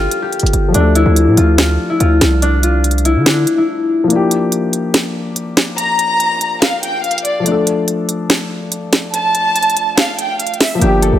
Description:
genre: hip hop, trap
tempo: 143 BPM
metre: 4/4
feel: half-time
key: D minor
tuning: A4 = 439 Hz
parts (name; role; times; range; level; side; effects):
- concert harp; melody; 0.0-6.2, 10.8-11.2 s; D4 to A4; -16 LUFS; left 2 dB; low-pass filter
- dark concert grand piano; accompaniment; 0.0-11.2 s; F3 to A4; -19 LUFS; left 3 dB; low-pass filter
- hard-hitting 808-style bass; bass; 0.0-3.5, 10.8-11.2 s; G1 to D3; -13 LUFS; right 1 dB; none
- trap drum kit; drums; 0.1-11.1 s; hi-hat, snare drum; -16 LUFS; right 1 dB; none
- warm chamber violin section; second line; 5.8-10.8 s; D5 to Bb5; -16 LUFS; equal; tape echo
room: light reverb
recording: none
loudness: -12 LUFS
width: side -12 dB against mid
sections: 0.0-11.2 A section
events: break 3.7-4.1, 4.1-10.8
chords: 0.0 Gm7; 0.7 Dm; 4.1 Gm7; 7.5 Dm

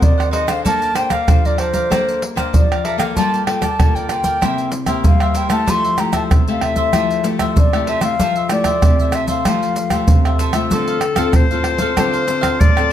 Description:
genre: samba and choro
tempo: 95 BPM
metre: 4/4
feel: straight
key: F major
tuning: A4 = 438 Hz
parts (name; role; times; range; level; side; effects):
- baroque flute; melody; 0.0-10.4 s; C5 to C6; -20 LUFS; left 2 dB; none
- cavaquinho; accompaniment; 0.0-12.9 s; D4 to Bb5; -25 LUFS; right 2 dB; none
- nylon-string guitar; accompaniment; 0.0-12.9 s; A2 to C5; -22 LUFS; left 4 dB; none
- egg shaker, surdo, pandeiro and tamborim; percussion; 0.0-12.9 s; none; -16 LUFS; right 1 dB; none
- bright clarinet; second line; 10.7-12.9 s; A4 to D5; -19 LUFS; left 5 dB; none
room: moderate large studio reverb, RT60 1.3 s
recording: close, detailed microphones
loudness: -14 LUFS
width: side -10 dB against mid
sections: 0.0-10.7 A section; 10.7-12.9 B section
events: clarinet solo 10.7-12.9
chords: 0.0 Ab9; 0.7 Bbmaj9; 3.2 Gm9; 4.4 C7; 5.7 Fmaj9; 10.7 Dm7

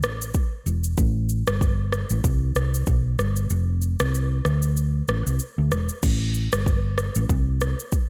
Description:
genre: afrobeats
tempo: 95 BPM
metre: 4/4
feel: swing 58% on 16ths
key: unclear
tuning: A4 = 441 Hz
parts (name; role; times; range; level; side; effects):
- hollow-body short-scale fingered electric bass; bass; 0.0-7.7 s; E1 to D2; -25 LUFS; equal; none
- afro-pop drum kit; drums; 0.0-8.1 s; crash cymbal, kick drum, rim click, shaker; -27 LUFS; equal; none
room: light reverb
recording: none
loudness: -24 LUFS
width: mono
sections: 0.0-6.0 A section; 6.0-8.1 B section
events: kick muted 3.5-6.0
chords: none

